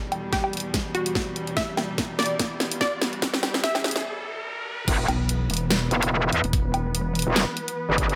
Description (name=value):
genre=heavy wobble dubstep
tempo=145 BPM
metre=4/4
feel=swing 55% on 16ths, half-time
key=E minor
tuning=A4 = 437 Hz
part: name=unison pluck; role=melody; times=0.0-4.0 s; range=F#4 to E5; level=-32 LUFS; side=equal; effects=vintage 12-bit sampler grit, dub echo
part: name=rich studio string section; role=sustained chords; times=0.0-8.2 s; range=E2 to B4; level=-34 LUFS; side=equal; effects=sidechain pumping, low-pass filter
part: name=riser and impact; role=sound effects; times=1.4-6.5 s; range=none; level=-39 LUFS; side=equal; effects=none
part: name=dubstep drum kit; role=drums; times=0.1-8.2 s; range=crash cymbal, hi-hat, snare drum, woodblock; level=-29 LUFS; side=equal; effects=none
part: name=electronic kick drum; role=drums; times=0.3-8.1 s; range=none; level=-30 LUFS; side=equal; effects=none
part: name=metallic wobble bass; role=bass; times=4.9-8.2 s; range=E1 to E2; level=-24 LUFS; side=equal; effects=chorus, overdrive
part: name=pulsing pluck wobble bass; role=bass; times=5.1-7.2 s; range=E1 to B1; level=-28 LUFS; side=equal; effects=chorus, overdrive
room=light reverb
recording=high-pass filter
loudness=-25 LUFS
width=mono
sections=0.0-4.9 A section; 4.9-8.2 B section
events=build-up 0.0-4.9; drum fill 0.0-4.0; filter sweep on string section 0.0-4.9; riser 1.4-4.9; break 4.0-4.9; drop 4.9-8.2; impact 4.9-6.5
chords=0.0 Em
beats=0.33 0.74 1.15 | 1.57 1.98 2.40 2.81 | 3.22 3.64 4.05 4.46 | 4.88 5.29 5.71 6.12 | 6.53 6.95 7.36 7.77